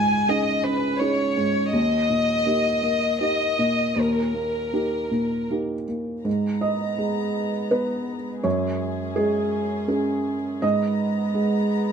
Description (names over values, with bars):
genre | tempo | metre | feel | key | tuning
neoclassical piano and strings | 82 BPM | 3/4 | rubato | G# minor | A4 = 442 Hz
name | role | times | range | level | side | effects
warm chamber violin section | melody | 0.0-5.5 s | A#4 to G#5 | -23 LUFS | left 2 dB | slapback echo
felt-muted upright piano | accompaniment | 0.0-11.9 s | C#2 to D#5 | -23 LUFS | right 2 dB | none
warm chamber string section | sustained chords | 6.2-11.9 s | G#3 to A#5 | -31 LUFS | left 1 dB | none
room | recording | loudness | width
light reverb | none | -21 LUFS | side -7 dB against mid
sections
0.0-6.3 A section; 6.3-11.9 B section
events
none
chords
0.0 C#sus2; 1.7 D#; 6.3 G#madd9; 8.4 F#sus2; 10.6 G#madd9